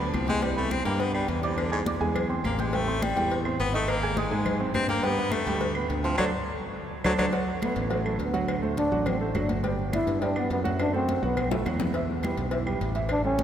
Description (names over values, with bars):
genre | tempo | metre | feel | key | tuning
Afro-Cuban jazz | 208 BPM | 4/4 | straight | D major from 7.3 s | A4 = 440 Hz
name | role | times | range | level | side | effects
bright baritone saxophone | second line | 0.0-7.3 s | G#2 to C4 | -30 LUFS | left 3 dB | none
dark baby grand piano | accompaniment | 0.0-13.4 s | E3 to G#6 | -30 LUFS | right 3 dB | none
modern bright fingered electric bass | bass | 0.0-13.4 s | G1 to Ab2 | -30 LUFS | equal | none
congas | percussion | 0.0-13.4 s | none | -34 LUFS | left 1 dB | none
claves | percussion | 0.1-13.2 s | none | -40 LUFS | right 2 dB | none
cowbell and bongos | percussion | 0.1-13.4 s | none | -35 LUFS | left 3 dB | none
mellow trombone | melody | 7.6-13.4 s | F#3 to E4 | -29 LUFS | equal | none
room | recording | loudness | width
wet cathedral reverb, RT60 5.7 s | recorded in a church or concert hall | -24 LUFS | side -9 dB against mid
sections
0.0-7.3 A section; 7.3-13.4 A section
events
baritone saxophone solo 0.0-7.3; band accent 6.2-7.3; drum fill 6.5-7.3, 11.5-11.9; trombone solo 7.3-13.4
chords
0.4 Cmaj7; 1.6 E7alt; 2.7 Am7; 3.9 Abadd9; 5.0 Gadd9; 6.2 D7(no3); 7.3 D6; 8.5 D7; 9.6 Gmaj7; 10.8 F#dim; 11.4 B5; 11.9 Emadd11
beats
0.14 | 0.43 0.71 1.00 1.29 | 1.58 1.87 2.15 2.44 | 2.73 3.02 3.31 3.60 | 3.88 4.17 4.46 4.75 | 5.03 5.32 5.61 5.90 | 6.18 6.47 6.76 7.05 | 7.33 7.62 7.91 8.20 | 8.49 8.78 9.06 9.35 | 9.64 9.93 10.22 10.51 | 10.79 11.08 11.37 11.66 | 11.95 12.23 12.52 12.81 | 13.10 13.39